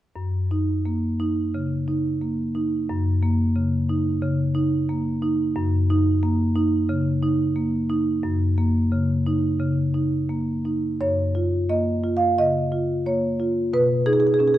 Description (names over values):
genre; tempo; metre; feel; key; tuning
classical, contemporary piece for solo marimba; 89 BPM; 4/4; rubato; F# major; A4 = 440 Hz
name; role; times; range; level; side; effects
marimba with medium mallets; solo; 0.2-14.6 s; F#2 to E#5; -20 LUFS; equal; none
room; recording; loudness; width
moderate recital hall reverb, RT60 1.5 s; dark, warm production; -20 LUFS; side -13 dB against mid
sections
0.2-11.0 A section; 11.0-14.6 B section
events
none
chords
0.2 F#6; 11.0 F#maj7; 13.7 B69